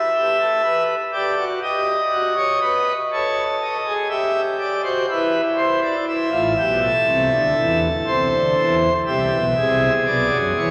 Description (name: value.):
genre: classical, baroque-style 3-part fugue for pipe organ.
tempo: 61 BPM.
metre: 4/4.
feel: straight.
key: A minor.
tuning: A4 = 439 Hz.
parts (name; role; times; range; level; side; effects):
pipe organ, principal chorus; solo; 0.0-10.7 s; A1 to E5; -20 LUFS; equal; none.
room: wet cathedral reverb, RT60 6.1 s.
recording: vinyl crackle.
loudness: -20 LUFS.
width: mono.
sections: 0.0-10.7 A section.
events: none.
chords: 0.2 Em/G; 2.1 D#dim/F#; 4.1 Em; 6.1 Am; 8.1 Am/C; 10.1 G#dim/B.